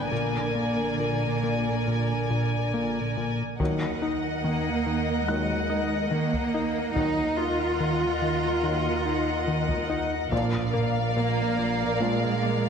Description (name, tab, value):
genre	cinematic, suspense film score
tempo	71 BPM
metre	4/4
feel	straight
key	Eb harmonic minor from 3.6 s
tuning	A4 = 440 Hz
part	rich studio violin section	melody	0.0-12.7 s	F5 to Ab5	-34 LUFS	left 2 dB	none
part	dark studio violin section	second line	0.0-12.7 s	Bb4 to Eb5	-33 LUFS	left 5 dB	none
part	dark studio viola section	accompaniment	0.0-12.7 s	Bb3 to Bb4	-35 LUFS	right 1 dB	none
part	dark studio double bass section	bass	0.0-12.7 s	Bb1 to Eb2	-32 LUFS	right 4 dB	none
part	warm studio cello section	bass	0.0-12.7 s	D3 to F4	-29 LUFS	right 2 dB	none
part	felt-muted upright piano	texture	0.0-10.3 s	Gb6 to G6	-40 LUFS	left 1 dB	none
part	fat analog bass	riff	0.1-12.7 s	Bb2 to Eb4	-30 LUFS	left 2 dB	none
part	clear trombone section	sustained chords	3.6-12.3 s	Bb2 to Gb3	-38 LUFS	right 5 dB	none
part	mellow French horn section	sustained chords	3.6-12.3 s	Bb3 to Eb4	-35 LUFS	left 4 dB	none
part	taiko ensemble	drums	3.6-12.7 s	none	-35 LUFS	equal	none
room	moderate scoring stage reverb, RT60 2.1 s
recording	heavily compressed radio sound, multiband compression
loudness	-24 LUFS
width	side -7 dB against mid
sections	0.0-3.6 A section; 3.6-12.7 B section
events	none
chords	0.1 Bb7; 3.6 Ebmadd9; 10.3 Bb